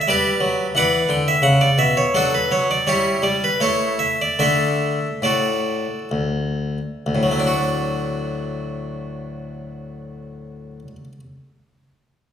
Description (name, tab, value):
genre	classical, baroque-style suite movement for harpsichord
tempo	62-90 BPM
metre	3/4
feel	rubato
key	D major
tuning	A4 = 440 Hz
part	harpsichord	solo	0.0-11.2 s	D2 to G5	-18 LUFS	equal	none
room	wet recital hall reverb, RT60 1.4 s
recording	recorded in a church or concert hall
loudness	-17 LUFS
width	side -8 dB against mid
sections	0.0-7.1 A section; 7.1-12.3 B section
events	slowing down 1.1-7.1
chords	0.1 G; 1.4 Bmadd9; 2.1 D/F#; 2.9 Em/G; 3.6 A; 4.4 D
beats	| 0.09 0.76 1.43 | 2.13 2.85 3.59 | 4.39 5.22 6.11 | 7.06 7.98 8.89 | 9.80 10.73